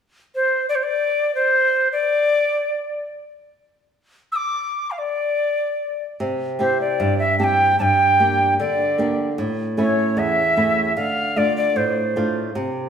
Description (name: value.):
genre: andean folk.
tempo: 75 BPM.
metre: 2/4.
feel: straight.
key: D minor.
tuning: A4 = 440 Hz.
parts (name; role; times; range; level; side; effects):
reedy quena; melody; 0.4-12.4 s; C5 to E6; -18 LUFS; equal; none.
flamenco guitar; accompaniment; 6.2-12.9 s; E2 to G4; -21 LUFS; right 2 dB; none.
room: wet stone room reverb, RT60 1.4 s.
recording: band playing live in one room.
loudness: -18 LUFS.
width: side -7 dB against mid.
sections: 0.0-6.2 A section; 6.2-12.9 B section.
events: none.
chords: 0.0 N.C.; 6.2 C; 7.8 Gm; 9.4 A; 11.0 Dm.